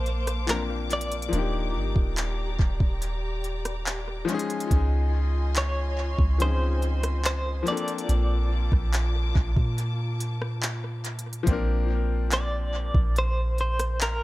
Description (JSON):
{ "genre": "contemporary R&B", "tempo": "71 BPM", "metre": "4/4", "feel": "straight", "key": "Bb major", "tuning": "A4 = 438 Hz", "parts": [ { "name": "direct-recorded clean electric guitar", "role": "melody", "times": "0.0-14.2 s", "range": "Bb4 to D5", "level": "-30 LUFS", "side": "equal", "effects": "tremolo, tape echo" }, { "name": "bright grand piano", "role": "accompaniment", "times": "0.0-14.2 s", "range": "F3 to Bb4", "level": "-32 LUFS", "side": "left 6 dB", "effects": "tape echo" }, { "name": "dark studio string section", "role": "sustained chords", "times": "0.0-11.4 s", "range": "Bb3 to D6", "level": "-37 LUFS", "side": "left 2 dB", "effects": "sidechain pumping" }, { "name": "soft 808-style bass", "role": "bass", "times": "0.0-14.2 s", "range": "Eb1 to Bb2", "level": "-26 LUFS", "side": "equal", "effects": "none" }, { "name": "smooth R&B drum kit", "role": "drums", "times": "0.1-14.2 s", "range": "handclaps, hi-hat, kick drum, rim click", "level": "-27 LUFS", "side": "equal", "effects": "tape echo" } ], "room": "digital ambience", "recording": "echo-heavy mix", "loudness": "-24 LUFS", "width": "side -17 dB against mid", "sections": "0.0-11.5 A section; 11.5-14.2 A section", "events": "none", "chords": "0.0 Bbmaj7; 1.3 Ebmaj7; 4.3 Dbmaj9; 7.7 Bbmaj7; 11.5 Bb", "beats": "0.48 | 1.33 2.17 3.02 3.86 | 4.71 5.55 6.40 7.24 | 8.09 8.93 9.78 10.62 | 11.47 12.31 13.16 14.00" }